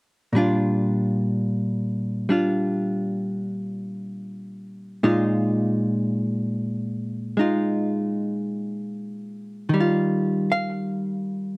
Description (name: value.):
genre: jazz ballad.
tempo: 51 BPM.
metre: 4/4.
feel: swing 67% on 8ths.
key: unclear.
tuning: A4 = 437 Hz.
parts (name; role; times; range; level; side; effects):
hollow-body jazz guitar; solo; 0.3-11.6 s; Bb2 to F5; -22 LUFS; equal; none.
room: little or no reverb.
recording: recorded outdoors, with no room sound.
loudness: -22 LUFS.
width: side -30 dB against mid.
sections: 0.3-9.7 A section; 9.7-11.6 B section.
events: none.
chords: 0.3 Bb6; 5.0 Bb7sus4; 9.7 Ebadd9.